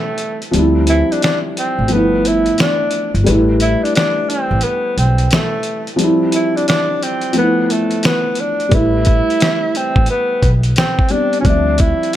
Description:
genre	lo-fi hip hop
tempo	88 BPM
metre	4/4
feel	swing 64% on 16ths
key	A minor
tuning	A4 = 438 Hz
part	breathy tenor saxophone	melody	0.0-12.2 s	A3 to E4	-18 LUFS	right 1 dB	low-pass filter
part	felt-muted upright piano	accompaniment	0.0-12.2 s	F3 to E5	-18 LUFS	left 1 dB	low-pass filter
part	dusty soul sampler-style drum kit	drums	0.2-12.2 s	hi-hat, kick drum, snare drum	-18 LUFS	equal	none
part	upright bass	bass	0.5-11.9 s	G1 to D2	-17 LUFS	equal	none
room	light reverb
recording	none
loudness	-13 LUFS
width	side -12 dB against mid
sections	0.0-12.2 A section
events	break 0.0-8.7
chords	0.0 Asus2; 0.5 Dm11; 1.9 G13; 3.3 Asus2; 6.0 Dm11/F; 7.4 Fmaj7#11; 8.7 Am9; 11.4 Dm11

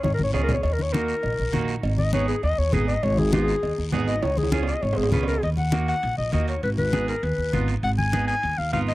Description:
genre	latin, cumbia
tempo	200 BPM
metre	4/4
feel	straight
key	unclear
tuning	A4 = 440 Hz
part	warm clarinet	melody	0.0-8.9 s	Ab4 to Ab5	-26 LUFS	left 2 dB	none
part	upright bass	bass	0.0-8.9 s	Ab1 to Eb2	-25 LUFS	equal	none
part	congas	percussion	0.0-8.9 s	none	-27 LUFS	left 2 dB	none
part	cowbell and timbales	percussion	0.0-8.9 s	none	-33 LUFS	right 6 dB	none
part	guiro	percussion	0.0-8.9 s	none	-42 LUFS	left 6 dB	none
part	clean electric guitar	accompaniment	0.3-8.9 s	Bb3 to Cb5	-31 LUFS	right 5 dB	spring reverb
room	little or no reverb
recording	dry, close 1970s-style studio recording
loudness	-21 LUFS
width	side -17 dB against mid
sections	0.0-5.4 A section; 5.4-8.9 B section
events	clarinet solo 0.0-5.4; drum fill 0.0-0.6, 4.2-5.4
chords	0.0 Db; 0.6 Ebm; 1.8 Abm; 4.2 Db; 5.4 Ebm; 6.6 Abm

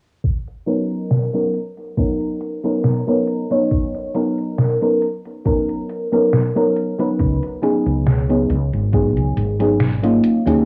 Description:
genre	vaporwave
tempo	69 BPM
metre	4/4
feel	swing 54% on 16ths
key	unclear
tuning	A4 = 436 Hz
part	detuned 8-bit digital drum machine	drums	0.2-10.6 s	hi-hat, snare drum	-20 LUFS	equal	overdrive
part	electronic kick drum	drums	0.2-9.1 s	none	-23 LUFS	equal	none
part	mellow FM electric piano	accompaniment	0.7-10.7 s	F#3 to C#5	-20 LUFS	equal	phaser, lush chorus, analog delay
part	woody fretless electric bass	bass	7.2-10.6 s	G#1 to D#2	-22 LUFS	equal	tube saturation
room	wet booth ambience, RT60 0.2 s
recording	home recording on cassette, low-pass filter, studio ambience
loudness	-19 LUFS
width	mono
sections	0.2-10.7 A section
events	filter sweep 0.2-10.7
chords	0.2 Bmaj9/F#; 7.2 C#9sus4

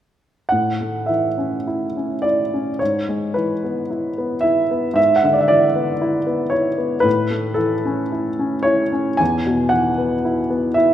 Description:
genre	classical, romantic nocturne for solo piano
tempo	52-59 BPM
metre	4/4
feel	rubato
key	A major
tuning	A4 = 440 Hz
part	warm baby grand piano	solo	0.5-10.9 s	E2 to G#5	-17 LUFS	equal	none
room	moderate scoring stage reverb, RT60 1.8 s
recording	none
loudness	-17 LUFS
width	side -11 dB against mid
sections	0.5-10.9 A section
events	none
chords	0.5 A; 2.8 E/G#; 5.0 E7/G#; 7.1 A; 9.2 E5

